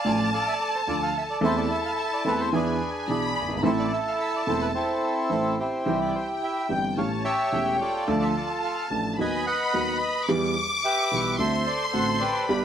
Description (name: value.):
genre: tango.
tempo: 108 BPM.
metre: 4/4.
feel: rubato.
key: A harmonic minor.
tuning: A4 = 440 Hz.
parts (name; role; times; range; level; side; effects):
bandoneon; melody; 0.0-12.6 s; C4 to A5; -26 LUFS; equal; none.
warm studio violin section; second line; 0.0-12.6 s; G5 to D6; -30 LUFS; left 2 dB; none.
warm concert grand piano; accompaniment; 0.0-12.6 s; E1 to A4; -26 LUFS; right 1 dB; none.
bandoneon; stabs; 0.1-5.5 s; E3 to A4; -33 LUFS; right 1 dB; none.
room: moderate studio reverb, RT60 0.9 s.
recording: none.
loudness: -23 LUFS.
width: side -9 dB against mid.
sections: 0.0-5.9 A section; 5.9-12.6 B section.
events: none.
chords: 0.0 Dm; 1.4 Am/E; 2.5 E7; 3.6 Am; 5.9 C; 7.0 A7; 8.1 Dm; 9.2 B/D#; 10.3 Em; 11.4 D7.